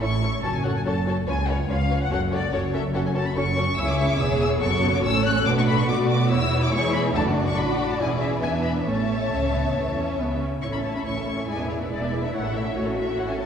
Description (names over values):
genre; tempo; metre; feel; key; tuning
quick classical-period movement for string orchestra; 142 BPM; 4/4; straight; A major; A4 = 442 Hz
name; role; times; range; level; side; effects
rich symphonic violin section; melody; 0.0-13.5 s; C#5 to F#6; -28 LUFS; left 4 dB; none
warm symphonic violin section; second line; 0.0-13.5 s; F#4 to E5; -29 LUFS; left 3 dB; none
warm symphonic viola section; accompaniment; 0.0-13.5 s; G#3 to G#4; -28 LUFS; equal; none
dark chamber double bass section; bass; 0.0-13.5 s; E1 to B2; -27 LUFS; right 2 dB; none
warm studio cello section; bass; 0.0-13.5 s; C#2 to F#4; -28 LUFS; right 2 dB; none
room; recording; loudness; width
wet concert hall reverb, RT60 2.0 s; heard from further back in the room; -21 LUFS; side -8 dB against mid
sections
0.0-10.6 A section; 10.6-13.5 A section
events
none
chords
0.4 F#m; 1.3 C#7; 2.1 F#m; 3.8 C#m7; 4.6 F#m; 5.5 Bm7; 6.3 E; 7.1 D/F#; 8.0 E7; 8.9 A; 11.5 E7; 12.3 A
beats
0.01 | 0.43 0.85 1.27 1.69 | 2.11 2.53 2.94 3.36 | 3.77 4.19 4.61 5.03 | 5.45 5.88 6.30 6.72 | 7.14 7.57 8.00 8.43 | 8.87 9.31 9.75 10.19 | 10.62 11.05 11.48 11.91 | 12.34 12.76 13.19